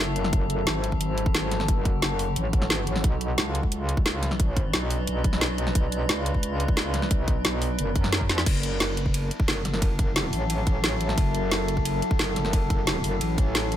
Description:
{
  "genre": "dark technical drum and bass",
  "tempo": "177 BPM",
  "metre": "4/4",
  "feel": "straight",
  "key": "F# minor",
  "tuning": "A4 = 440 Hz",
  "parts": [
    { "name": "metallic inharmonic drone", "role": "sustained chords", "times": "0.0-13.8 s", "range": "F#3 to B4", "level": "-30 LUFS", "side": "left 1 dB", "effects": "chorus, built-in reverb, sidechain pumping" },
    { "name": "metallic wobble bass", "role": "bass", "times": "0.0-13.8 s", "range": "F#1 to F#2", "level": "-27 LUFS", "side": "equal", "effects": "chorus, overdrive" },
    { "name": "drum and bass drum kit", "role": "drums", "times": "0.2-13.8 s", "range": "crash cymbal, hi-hat, ride cymbal, snare drum", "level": "-27 LUFS", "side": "equal", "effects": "none" },
    { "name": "electronic kick drum", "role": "drums", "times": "0.3-13.4 s", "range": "none", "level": "-24 LUFS", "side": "equal", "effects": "none" }
  ],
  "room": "little or no reverb",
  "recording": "none",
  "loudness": "-22 LUFS",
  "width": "side -11 dB against mid",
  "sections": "0.0-8.5 A section; 8.5-13.8 A section",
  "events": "drop 0.0-8.5, 8.5-13.8; drum fill 8.3",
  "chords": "0.0 F#m; 3.0 Bmadd9; 8.5 F#m7"
}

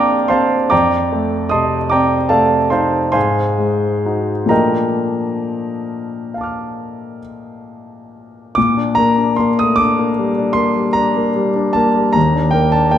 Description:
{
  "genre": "classical, impressionist solo piano",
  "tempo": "42-53 BPM (dotted quarters)",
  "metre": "9/8",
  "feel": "rubato",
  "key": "Bb major",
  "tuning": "A4 = 440 Hz",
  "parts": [
    { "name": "warm concert grand piano", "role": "solo", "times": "0.0-13.0 s", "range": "Eb2 to A6", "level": "-14 LUFS", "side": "equal", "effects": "none" }
  ],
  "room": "wet recital hall reverb, RT60 1.7 s",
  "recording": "dark, warm production",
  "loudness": "-13 LUFS",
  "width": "side -10 dB against mid",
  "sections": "0.0-8.6 A section; 8.6-13.0 A section",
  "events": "none",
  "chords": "0.0 Bb69; 0.7 F13; 3.1 Ab7; 4.5 Bbmaj7; 8.6 Bb6; 12.2 Ebmaj7#11"
}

